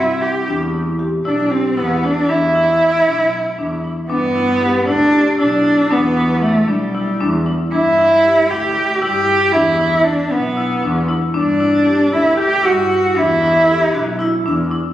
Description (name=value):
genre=contemporary instrumental, chamber music in an uneven meter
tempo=232 BPM (eighths)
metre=7/8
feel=straight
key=E minor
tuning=A4 = 440 Hz
part: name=warm cello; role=melody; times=0.0-14.2 s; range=G3 to G4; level=-14 LUFS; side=right 1 dB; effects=none
part: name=marimba with medium mallets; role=arpeggios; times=0.0-14.9 s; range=C4 to G4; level=-20 LUFS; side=left 3 dB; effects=none
part: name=clear double bass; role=bass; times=0.0-14.7 s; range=B1 to G2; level=-23 LUFS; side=equal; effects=none
part: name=vibraphone with medium mallets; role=second line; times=13.6-14.8 s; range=D4 to A4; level=-23 LUFS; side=right 1 dB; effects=none
room=moderate scoring stage reverb, RT60 1.7 s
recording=recorded on a phone in the room, studio reverb, compression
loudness=-13 LUFS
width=side -13 dB against mid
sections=0.0-4.1 A section; 4.1-14.9 B section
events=none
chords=0.5 Em7; 2.3 E5; 4.1 G6; 5.9 Em7; 7.7 G5; 9.5 E5; 11.3 G5; 13.2 E5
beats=0.22 | 0.48 0.74 1.00 1.26 1.51 1.77 2.03 | 2.29 2.55 2.81 3.07 3.33 3.59 3.84 | 4.10 4.36 4.62 4.88 5.14 5.40 5.65 | 5.91 6.17 6.43 6.69 6.95 7.21 7.46 | 7.72 7.98 8.24 8.50 8.76 9.01 9.27 | 9.53 9.79 10.05 10.31 10.57 10.82 11.08 | 11.34 11.60 11.86 12.12 12.38 12.63 12.89 | 13.15 13.41 13.67 13.93 14.19 14.45 14.71